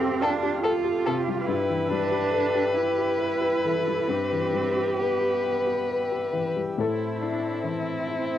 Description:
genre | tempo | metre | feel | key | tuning
neoclassical piano and strings | 66-72 BPM | 3/4 | rubato | unclear | A4 = 440 Hz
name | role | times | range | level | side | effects
muted cello | second line | 0.0-8.4 s | B3 to F4 | -30 LUFS | right 6 dB | cassette tape
felt-muted upright piano | accompaniment | 0.0-8.4 s | F2 to G5 | -30 LUFS | left 6 dB | cassette tape
muted viola | accompaniment | 0.0-8.4 s | C4 to B4 | -32 LUFS | right 6 dB | cassette tape
pedal harmonium | sustained chords | 0.0-8.4 s | G3 to F5 | -37 LUFS | equal | cassette tape
muted violin | melody | 0.2-8.4 s | E4 to B4 | -27 LUFS | left 2 dB | none
room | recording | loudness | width
light reverb, studio reverb | home recording on cassette | -23 LUFS | side -11 dB against mid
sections
0.0-6.8 A section; 6.8-8.4 B section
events
none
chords
0.0 Fadd9; 1.5 Em/G; 6.8 Am

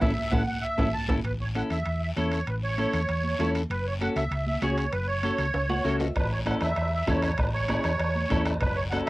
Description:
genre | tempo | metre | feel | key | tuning
latin, cumbia | 196 BPM | 4/4 | straight | A major | A4 = 440 Hz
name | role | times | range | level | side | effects
musette accordion | melody | 0.0-9.1 s | B4 to A5 | -30 LUFS | right 2 dB | none
clean electric guitar | accompaniment | 0.0-9.1 s | C#4 to F#5 | -29 LUFS | left 2 dB | cassette tape
hollow-body short-scale fingered electric bass | bass | 0.0-9.0 s | F#1 to E2 | -29 LUFS | equal | none
bombo | percussion | 0.0-1.2, 6.2-9.1 s | none | -29 LUFS | equal | none
congas | percussion | 0.0-9.1 s | none | -34 LUFS | right 2 dB | none
guiro | percussion | 0.0-9.1 s | none | -43 LUFS | left 3 dB | none
timbales | percussion | 0.0-9.1 s | none | -36 LUFS | right 3 dB | none
room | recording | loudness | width
light reverb | home recording on cassette | -24 LUFS | side -19 dB against mid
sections
0.0-1.2 A section; 1.2-9.1 B section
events
band accent 0.0-1.2; drum fill 0.3-1.2, 5.5-6.2; clean electric guitar fill 5.5-6.2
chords
0.0 A; 3.7 F#m; 6.2 A

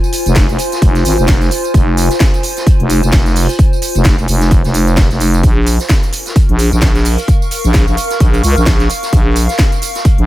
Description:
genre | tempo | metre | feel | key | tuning
bass house | 130 BPM | 4/4 | swing 57% on 16ths | F minor | A4 = 439 Hz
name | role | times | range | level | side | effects
house drum kit | drums | 0.0-10.3 s | hi-hat, snare drum, tambourine | -20 LUFS | right 1 dB | none
warbly tape-like pad | texture | 0.0-10.3 s | F4 to Db6 | -20 LUFS | left 1 dB | chorus, built-in reverb, phaser, sidechain pumping
street-band drum kit | drums | 0.1-10.2 s | hi-hat, snare drum | -28 LUFS | equal | sidechain pumping on hats, high-pass filter on hats, high-pass filter on snare, high-pass filter on room
growling FM bass | bass | 0.3-10.3 s | F1 to Db2 | -12 LUFS | equal | overdrive, sidechain pumping
electronic kick drum | drums | 0.4-10.2 s | none | -11 LUFS | equal | none
room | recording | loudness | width
little or no reverb | none | -9 LUFS | side -15 dB against mid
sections
0.0-10.3 A section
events
none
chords
0.0 Fm; 5.4 Bbm

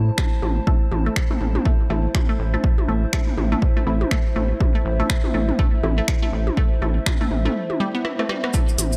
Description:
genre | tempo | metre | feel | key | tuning
minimal techno | 122 BPM | 4/4 | swing 59% on 16ths | A minor | A4 = 440 Hz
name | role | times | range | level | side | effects
rubbery square bass | bass | 0.0-9.0 s | A1 to A2 | -24 LUFS | equal | sidechain pumping
warbly tape-like pad | texture | 0.0-9.0 s | E4 to A5 | -32 LUFS | equal | chorus, built-in reverb, sidechain pumping
electronic kick drum | drums | 0.2-8.7 s | none | -23 LUFS | equal | none
punchy analog drum machine | drums | 0.2-8.9 s | finger snaps, hi-hat, rim click | -31 LUFS | equal | none
electronic toms | percussion | 0.2-8.9 s | none | -30 LUFS | equal | dub echo
resonant blip pluck | riff | 0.7-8.6 s | G3 to E4 | -31 LUFS | equal | phaser, vintage 12-bit sampler grit, sidechain pumping, tape echo
filtered dub chord stab | stabs | 1.9-8.2 s | A3 to E4 | -33 LUFS | equal | none
cabasa | percussion | 8.5-9.0 s | none | -28 LUFS | equal | none
room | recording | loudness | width
light reverb | none | -21 LUFS | mono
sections
0.0-9.0 A section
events
drum fill 8.0-8.5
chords
0.0 Am

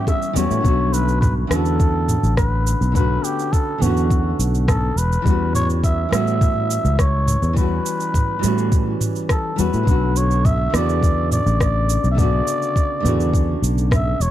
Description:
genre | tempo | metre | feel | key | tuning
sunset chillout | 104 BPM | 4/4 | straight | unclear | A4 = 440 Hz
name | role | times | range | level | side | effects
trumpet with cup mute | melody | 0.0-14.3 s | F#4 to E5 | -24 LUFS | equal | digital delay
nylon-string guitar | accompaniment | 0.0-14.2 s | C#3 to F#5 | -24 LUFS | moving between left 8 dB and right 6 dB | auto-pan, vintage 12-bit sampler grit, digital delay
ethereal airy pad | sustained chords | 0.0-0.6 s | G3 to C#6 | -33 LUFS | right 1 dB | none
electronic kick drum | drums | 0.1-14.0 s | none | -18 LUFS | equal | none
smooth R&B drum kit | drums | 0.1-14.3 s | cabasa, rim click, toms | -25 LUFS | equal | none
bongos | percussion | 0.1-0.5 s | none | -32 LUFS | right 1 dB | none
sustaining fretless electric bass | bass | 0.4-14.3 s | E1 to A2 | -19 LUFS | equal | none
room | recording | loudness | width
little or no reverb | dark, warm production | -16 LUFS | side -12 dB against mid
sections
0.6-14.3 A section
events
none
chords
0.0 Em69; 0.6 Bm7; 5.0 Em69; 9.9 Bm7

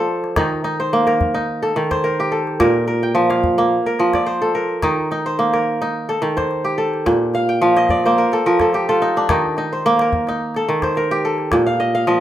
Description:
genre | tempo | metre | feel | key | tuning
west african traditional, West African string and xylophone music | 108 BPM | 4/4 | swing 53% on 16ths | unclear | A4 = 441 Hz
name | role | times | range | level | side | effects
kora | arpeggios | 0.0-12.2 s | Bb2 to G5 | -16 LUFS | equal | plate reverb
calabash | percussion | 0.2-12.1 s | none | -26 LUFS | left 2 dB | none
room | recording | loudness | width
wet studio reverb, RT60 0.5 s | rough home demo mix | -15 LUFS | side -12 dB against mid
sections
0.0-12.2 A section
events
kora fill 7.3-9.3, 11.7-12.2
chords
0.4 Eb; 2.6 Bb5; 3.7 F; 4.8 Eb; 7.1 Bb5; 8.2 F; 9.3 Eb; 11.5 Bb5

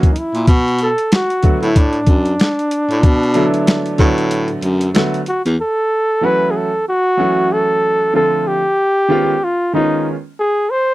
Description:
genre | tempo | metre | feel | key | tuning
hip hop, jazz-hop | 94 BPM | 4/4 | swing 58% on 16ths | B minor | A4 = 440 Hz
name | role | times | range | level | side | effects
clear upright piano | accompaniment | 0.0-10.1 s | D3 to F#4 | -18 LUFS | right 1 dB | none
boom bap sampler-style drum kit | drums | 0.0-5.6 s | hi-hat, kick drum, snare drum | -13 LUFS | equal | none
breathy flugelhorn | melody | 0.1-10.9 s | D4 to C5 | -16 LUFS | equal | none
breathy baritone saxophone | bass | 0.3-5.6 s | E2 to B2 | -17 LUFS | equal | none
room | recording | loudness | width
little or no reverb | dry, close 1970s-style studio recording | -13 LUFS | side -17 dB against mid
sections
0.0-5.6 A section; 5.6-10.9 B section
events
break 4.3-5.6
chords
0.5 Bm7; 5.6 F#m7; 8.1 Dm7; 9.4 C#9

